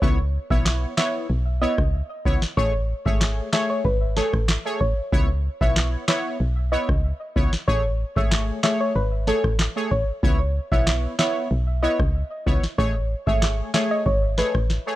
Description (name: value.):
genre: dancehall.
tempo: 94 BPM.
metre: 4/4.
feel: straight.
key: C# minor.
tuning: A4 = 441 Hz.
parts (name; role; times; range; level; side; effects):
synth brass stab; accompaniment; 0.0-15.0 s; A3 to C#5; -27 LUFS; left 1 dB; chorus, sidechain pumping.
solid FM bass; bass; 0.0-14.8 s; G#1 to C#2; -23 LUFS; equal; none.
booming analog drum machine; drums; 0.0-14.9 s; handclaps, kick drum, rim click, snare drum; -23 LUFS; equal; vintage 12-bit sampler grit.
soft round pluck; melody; 0.5-14.5 s; A4 to E5; -27 LUFS; equal; chorus, tape echo.
room: little or no reverb.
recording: dry, gritty hardware recording.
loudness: -20 LUFS.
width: side -16 dB against mid.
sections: 0.0-15.0 A section.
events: break 0.0-5.1; drum fill 14.7.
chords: 0.0 C#m7; 2.6 Amaj7; 5.1 C#m7; 7.7 Amaj7; 10.2 C#m7; 12.8 Amaj7.